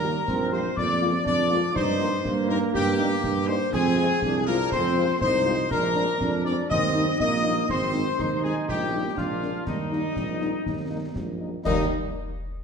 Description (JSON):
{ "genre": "military-style march for wind band", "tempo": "121 BPM", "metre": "2/4", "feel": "straight", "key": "Eb major", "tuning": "A4 = 439 Hz", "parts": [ { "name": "warm trumpet section", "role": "melody", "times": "0.0-11.9 s", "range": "Eb4 to Eb5", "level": "-30 LUFS", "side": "left 1 dB", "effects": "none" }, { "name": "dark woodwind section", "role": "second line", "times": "0.0-11.9 s", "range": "Eb4 to Eb5", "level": "-30 LUFS", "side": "left 4 dB", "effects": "none" }, { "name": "piccolo", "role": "second line", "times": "0.0-11.9 s", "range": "Eb5 to Eb6", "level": "-32 LUFS", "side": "left 4 dB", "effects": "none" }, { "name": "mellow French horn section", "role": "accompaniment", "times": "0.0-11.9 s", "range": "G3 to G4", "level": "-32 LUFS", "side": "left 5 dB", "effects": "none" }, { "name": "mellow trombone section", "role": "sustained chords", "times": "0.0-11.9 s", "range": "G3 to Eb4", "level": "-31 LUFS", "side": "right 4 dB", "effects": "none" }, { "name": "mellow tuba", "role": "bass", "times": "0.0-11.9 s", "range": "Ab1 to G2", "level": "-28 LUFS", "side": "right 4 dB", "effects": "none" }, { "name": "concert snare drum, concert bass drum and clash cymbals", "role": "drums", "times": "0.0-11.9 s", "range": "none", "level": "-34 LUFS", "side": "left 1 dB", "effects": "none" } ], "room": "wet scoring stage reverb, RT60 1.7 s", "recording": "dark, warm production", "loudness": "-22 LUFS", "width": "side -6 dB against mid", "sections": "0.0-11.7 A section", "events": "none", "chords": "0.0 Eb; 0.8 Bb7/F; 1.8 Eb/G; 3.7 Fm; 5.7 Bb9; 6.7 Eb; 7.7 Ab; 8.7 Eb/Bb; 9.2 Bb7; 9.7 Eb" }